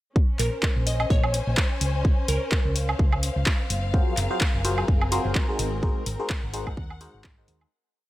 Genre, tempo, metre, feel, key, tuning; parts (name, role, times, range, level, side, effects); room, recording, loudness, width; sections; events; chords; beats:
piano house; 127 BPM; 4/4; swing 56% on 16ths; Bb minor; A4 = 440 Hz
electronic kick drum; drums; 0.2-7.4 s; -23 LUFS; equal
warm studio string section; texture; 0.2-7.7 s; C4 to Ab5; -33 LUFS; left 2 dB; sidechain pumping
glassy wavetable pluck; melody; 0.4-3.0 s; Bb4 to Eb5; -33 LUFS; right 1 dB; chorus, dub echo
hollow-body short-scale fingered electric bass; bass; 0.4-7.6 s; Gb1 to Eb2; -27 LUFS; equal; sidechain pumping
house drum kit; drums; 0.4-7.7 s; handclaps, hi-hat, woodblock; -29 LUFS; equal
barking FM electric piano; riff; 3.9-7.7 s; Gb3 to C5; -30 LUFS; left 1 dB; phaser, sidechain pumping
digital ambience; -22 LUFS; side -16 dB against mid
0.2-7.7 groove
fade-out 5.2-7.7
0.2 Bbm9; 2.0 Dbmaj7; 3.7 Gbmaj9#11; 5.6 Ab9
| 0.16 0.63 1.10 1.58 | 2.05 2.52 2.99 3.47 | 3.94 4.41 4.88 5.36 | 5.83 6.30 6.77 7.25